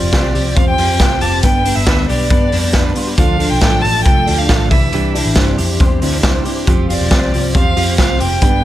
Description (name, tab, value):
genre	jangly indie pop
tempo	137 BPM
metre	4/4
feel	straight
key	unclear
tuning	A4 = 441 Hz
part	dark violin	melody	0.0-8.6 s	D5 to A5	-19 LUFS	right 1 dB	slapback echo
part	fingerpicked plugged-in steel-string acoustic guitar	accompaniment	0.0-8.6 s	G2 to B4	-21 LUFS	right 5 dB	none
part	twelve-string electric guitar	arpeggios	0.0-8.6 s	E3 to A4	-21 LUFS	left 5 dB	ensemble chorus
part	vintage muted picked electric bass	bass	0.0-8.6 s	E1 to G2	-18 LUFS	equal	none
part	raw garage drum kit	drums	0.1-8.5 s	hi-hat, kick drum, snare drum	-14 LUFS	equal	none
room	little or no reverb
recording	none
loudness	-11 LUFS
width	side -13 dB against mid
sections	0.0-8.6 A section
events	none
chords	0.0 Fsus2; 1.4 G; 3.2 Dm; 4.7 Cadd9; 6.7 Fsus2